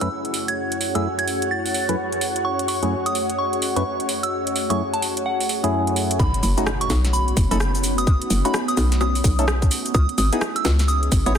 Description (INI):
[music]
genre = UK garage, two-step garage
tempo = 128 BPM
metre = 4/4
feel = swing 62% on 16ths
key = F# dorian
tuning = A4 = 442 Hz
[part]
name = soft synth bell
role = melody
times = 0.0-11.4 s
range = F#5 to A6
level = -26 LUFS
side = right 1 dB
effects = chorus, ping-pong delay
[part]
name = ethereal airy pad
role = sustained chords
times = 0.0-11.4 s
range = F#2 to D#5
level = -30 LUFS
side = equal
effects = ensemble chorus, built-in reverb, sidechain pumping
[part]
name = percussive organ stab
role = stabs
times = 0.0-11.3 s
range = F#2 to C#5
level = -25 LUFS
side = equal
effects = chorus, phaser, tape echo
[part]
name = house drum kit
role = drums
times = 0.0-11.4 s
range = bongos, hi-hat, rim click, shaker, snare drum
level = -26 LUFS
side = right 1 dB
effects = studio reverb, soft clipping on snare
[part]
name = ethereal airy pad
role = texture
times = 0.0-11.4 s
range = B3 to F#5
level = -27 LUFS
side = equal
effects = ensemble chorus, built-in reverb, sidechain pumping
[part]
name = hollow knocking FM bass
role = bass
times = 6.2-11.4 s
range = F#1 to C#2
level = -20 LUFS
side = equal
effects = sidechain pumping
[part]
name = electronic kick drum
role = drums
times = 6.2-11.2 s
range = none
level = -19 LUFS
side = equal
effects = studio reverb
[part]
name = impact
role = sound effects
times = 6.2-8.1 s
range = none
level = -30 LUFS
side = equal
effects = none
[sound]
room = light reverb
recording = dense, heavily limited modern master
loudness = -19 LUFS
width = side -8 dB against mid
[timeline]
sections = 0.0-6.2 A section; 6.2-11.4 B section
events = drop 6.2-11.4; impact 6.2-8.1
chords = 0.0 F#m9; 6.2 B7; 9.7 C#m9